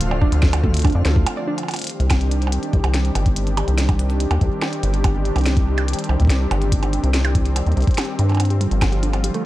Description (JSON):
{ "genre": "IDM", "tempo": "143 BPM", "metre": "4/4", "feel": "straight", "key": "C minor", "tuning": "A4 = 443 Hz", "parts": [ { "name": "warm analog pad", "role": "sustained chords", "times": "0.0-9.5 s", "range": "D3 to G4", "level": "-25 LUFS", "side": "left 1 dB", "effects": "chorus" }, { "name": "deep acid bass", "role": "bass", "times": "0.0-9.3 s", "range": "D1 to G2", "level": "-19 LUFS", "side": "equal", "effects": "none" }, { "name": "glitchy drum kit", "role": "drums", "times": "0.0-9.4 s", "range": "hi-hat, percussion blips, snare drum, toms", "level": "-26 LUFS", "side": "right 2 dB", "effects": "studio ambience, digital delay" }, { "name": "twinkling granular texture", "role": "texture", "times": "0.0-1.7 s", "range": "F4 to F5", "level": "-38 LUFS", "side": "left 2 dB", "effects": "none" }, { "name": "warbly dusty pluck", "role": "arpeggios", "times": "0.1-1.6, 8.5-9.4 s", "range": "G3 to D5", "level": "-27 LUFS", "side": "right 4 dB", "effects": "chorus, cassette tape, digital delay" }, { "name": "electronic kick drum", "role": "drums", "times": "0.2-8.9 s", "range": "none", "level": "-18 LUFS", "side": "equal", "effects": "overdrive, studio ambience" } ], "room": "light reverb", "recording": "dark, warm production", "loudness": "-16 LUFS", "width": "side -16 dB against mid", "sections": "0.0-1.7 A section; 1.7-9.5 B section", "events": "break 1.3-1.7", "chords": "0.0 Dm7; 1.7 Cmadd9; 8.4 G7sus4" }